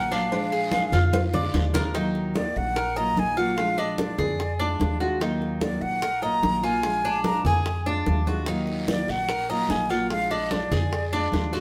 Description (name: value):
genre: latin, Cuban son and guajira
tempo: 147 BPM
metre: 4/4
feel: straight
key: Eb harmonic minor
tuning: A4 = 442 Hz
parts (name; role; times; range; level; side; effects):
- breathy jazz flute; melody; 0.0-11.3 s; D5 to Bb5; -29 LUFS; equal; none
- nylon-string guitar; accompaniment; 0.0-11.6 s; Eb3 to F4; -33 LUFS; equal; none
- Cuban tres; arpeggios; 0.0-11.6 s; D4 to Eb5; -32 LUFS; equal; none
- upright bass; bass; 0.0-11.6 s; Bb1 to F2; -32 LUFS; equal; none
- congas; percussion; 0.1-11.5 s; none; -34 LUFS; equal; none
- cowbell and bongos; percussion; 0.1-11.6 s; none; -34 LUFS; equal; none
- guiro; percussion; 0.1-1.9, 8.5-11.6 s; none; -43 LUFS; equal; none
room: moderate stone room reverb, RT60 1.0 s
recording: band playing live in one room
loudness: -25 LUFS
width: mono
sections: 0.0-1.9 A section; 1.9-11.6 B section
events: drum fill 1.1-1.9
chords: 0.3 Bb7; 1.9 Ebmadd9; 3.6 Bb7; 5.2 Ebmadd9; 6.8 Bb7; 8.5 Ebmadd9; 10.1 Bb7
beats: | 0.32 0.72 1.13 1.54 | 1.95 2.35 2.76 3.17 | 3.58 3.98 4.39 4.80 | 5.21 5.62 6.03 6.43 | 6.84 7.25 7.66 8.06 | 8.47 8.88 9.29 9.70 | 10.11 10.51 10.92 11.33